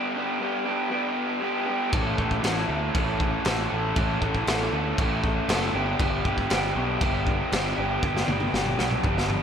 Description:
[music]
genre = classic rock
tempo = 118 BPM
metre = 4/4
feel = straight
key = unclear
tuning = A4 = 441 Hz
[part]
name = raw garage guitar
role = riff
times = 0.0-9.4 s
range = G2 to A4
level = -25 LUFS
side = equal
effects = overdrive, spring reverb, slapback echo
[part]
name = growling picked electric bass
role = bass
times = 1.9-9.4 s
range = F#1 to D2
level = -30 LUFS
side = equal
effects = overdrive
[part]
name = raw garage drum kit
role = drums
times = 1.9-9.4 s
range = crash cymbal, kick drum, snare drum, toms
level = -27 LUFS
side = equal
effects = none
[sound]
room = moderate scoring stage reverb, RT60 1.8 s, studio reverb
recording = big arena sound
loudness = -23 LUFS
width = side -8 dB against mid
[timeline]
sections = 0.0-9.4 A section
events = drum fill 8.0-9.4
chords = 0.0 G; 1.9 A; 5.7 G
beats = 0.41 0.92 1.42 | 1.93 2.44 2.95 3.46 | 3.96 4.47 4.98 5.49 | 6.00 6.51 7.01 7.52 | 8.03 8.54 9.05

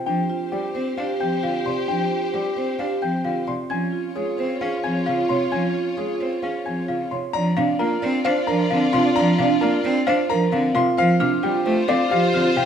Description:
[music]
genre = classical, minimalist pattern music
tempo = 132 BPM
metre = 4/4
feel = straight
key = Bb major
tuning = A4 = 440 Hz
[part]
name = warm grand piano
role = melody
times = 0.0-12.7 s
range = G4 to C6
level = -27 LUFS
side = left 5 dB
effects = none
[part]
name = marimba with soft mallets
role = arpeggios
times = 0.0-12.7 s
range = C4 to D5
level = -24 LUFS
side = right 4 dB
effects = none
[part]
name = mellow French horn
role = second line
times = 0.1-12.7 s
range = D4 to G4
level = -27 LUFS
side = right 3 dB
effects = none
[part]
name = rich cello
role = accompaniment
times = 0.1-12.7 s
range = C3 to D4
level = -26 LUFS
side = equal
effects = none
[part]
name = rich studio violin section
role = sustained chords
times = 0.1-12.7 s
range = F4 to D5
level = -30 LUFS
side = left 3 dB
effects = none
[part]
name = worn celesta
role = arpeggios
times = 1.2-12.7 s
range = F5 to Ab6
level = -27 LUFS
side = left 4 dB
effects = none
[sound]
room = moderate large studio reverb, RT60 1.0 s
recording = heard from further back in the room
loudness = -19 LUFS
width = side -8 dB against mid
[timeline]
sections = 0.0-7.3 A section; 7.3-12.7 B section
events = none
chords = 0.1 Fsus2; 3.7 Db; 7.3 Bb; 11.0 Dm7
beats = | 0.07 0.52 0.98 1.43 | 1.89 2.34 2.79 3.25 | 3.70 4.16 4.61 5.07 | 5.52 5.98 6.43 6.88 | 7.34 7.79 8.25 8.70 | 9.16 9.61 10.07 10.52 | 10.98 11.43 11.88 12.34

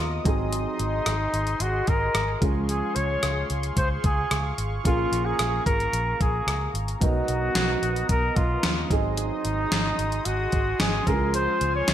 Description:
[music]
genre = 1980s-style pop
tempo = 111 BPM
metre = 4/4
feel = straight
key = unclear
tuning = A4 = 440 Hz
[part]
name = clear flugelhorn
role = melody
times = 0.0-11.9 s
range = Eb4 to Db5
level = -27 LUFS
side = equal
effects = ping-pong delay
[part]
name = warm baby grand piano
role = accompaniment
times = 0.0-11.9 s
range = E3 to A#4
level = -32 LUFS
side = right 2 dB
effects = wide subtle chorus
[part]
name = warm analog pad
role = sustained chords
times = 0.0-11.9 s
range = B3 to D#6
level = -34 LUFS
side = equal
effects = chorus, tremolo
[part]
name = vintage muted fingered electric bass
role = bass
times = 0.0-11.9 s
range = Ab1 to D#2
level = -29 LUFS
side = equal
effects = none
[part]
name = gated 80s digital drum machine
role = drums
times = 0.3-11.9 s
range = hi-hat, kick drum, rim click, snare drum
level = -26 LUFS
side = equal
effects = gated reverb, gated reverb snare, overdrive
[sound]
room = moderate plate reverb, RT60 1.6 s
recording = bright 1980s-style digital production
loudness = -22 LUFS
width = side -10 dB against mid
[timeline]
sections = 0.0-11.9 A section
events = none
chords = 0.3 Ab7; 2.4 Dbmaj7; 4.9 Bbm7; 7.0 Bmaj7; 8.9 Ab7; 11.1 Dbmaj7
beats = | 0.53 1.07 1.61 2.15 | 2.69 3.23 3.77 4.31 | 4.85 5.39 5.93 6.47 | 7.01 7.55 8.10 8.64 | 9.18 9.72 10.26 10.80 | 11.34 11.88

